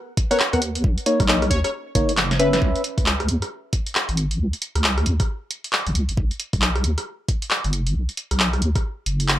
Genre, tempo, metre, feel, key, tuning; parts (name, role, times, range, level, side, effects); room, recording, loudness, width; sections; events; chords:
UK garage, two-step garage; 135 BPM; 4/4; swing 62% on 16ths; C# dorian; A4 = 440 Hz
electronic kick drum; drums; 0.2-8.8 s; -22 LUFS; equal; overdrive
punchy analog drum machine; drums; 0.2-9.4 s; handclaps, hi-hat, rim click, snare drum; -22 LUFS; equal
plucky unison lead; melody; 0.3-2.6 s; B4 to C#5; -26 LUFS; left 1 dB; analog delay
percussive organ stab; stabs; 0.3-2.8 s; A#3 to F#5; -23 LUFS; equal; lush chorus, cassette tape, analog delay
deep soft wobble bass; bass; 0.5-9.4 s; F#1 to E2; -22 LUFS; equal; chorus
digital ambience; dry, gritty hardware recording; -19 LUFS; side -13 dB against mid
0.0-2.6 A section; 2.6-9.4 B section
drop 0.0-2.6; kick drops out 2.2-2.6; drum fill 2.2-2.6
0.0 G#m9 (rootless); 0.8 Bmaj9; 2.6 C#m; 6.2 B5